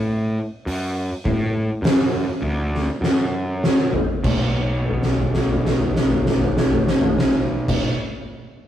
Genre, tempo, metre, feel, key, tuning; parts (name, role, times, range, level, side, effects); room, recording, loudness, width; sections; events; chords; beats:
stoner and doom metal; 49-52 BPM; 4/4; straight; B minor; A4 = 440 Hz
fuzz picked electric bass; bass; 0.0-7.9 s; B1 to A2; -23 LUFS; equal; overdrive
oversized low-tuned drum kit; drums; 0.7-8.0 s; crash cymbal, hi-hat, kick drum, snare drum, toms; -20 LUFS; equal
light reverb; rough rehearsal-room recording, warm saturation; -18 LUFS; side -11 dB against mid
0.0-4.2 A section; 4.2-8.7 B section
slowing down 0.0-4.2; drum fill 3.0-4.2, 4.9-7.7
0.67 1.84 3.02 | 4.24 5.47 6.71 7.94